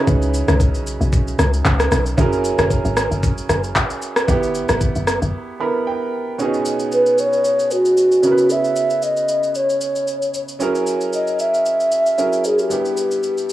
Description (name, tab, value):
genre	amapiano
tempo	114 BPM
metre	4/4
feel	swing 55% on 16ths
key	B major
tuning	A4 = 440 Hz
part	bright baby grand piano	accompaniment	0.0-13.5 s	G2 to B5	-22 LUFS	right 3 dB	cassette tape
part	deep log drum bass	bass	0.1-5.3 s	F#1 to C#2	-20 LUFS	left 1 dB	none
part	smooth R&B drum kit	drums	0.1-13.5 s	handclaps, kick drum, rim click, shaker	-21 LUFS	equal	cassette tape
part	breathy mellow bass ocarina	melody	6.9-13.5 s	F#4 to E5	-16 LUFS	equal	cassette tape, tape echo
room	light reverb, digital ambience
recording	home recording on cassette, small room ambience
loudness	-16 LUFS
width	side -14 dB against mid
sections	0.0-6.4 A section; 6.4-13.5 B section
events	drop 0.0-6.4; break 5.3-6.4; grand piano fill 5.3-6.4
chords	0.0 C#m7; 2.2 F#7; 4.3 Em; 6.4 B69; 8.2 C#m7; 10.6 F#7; 12.7 Em/G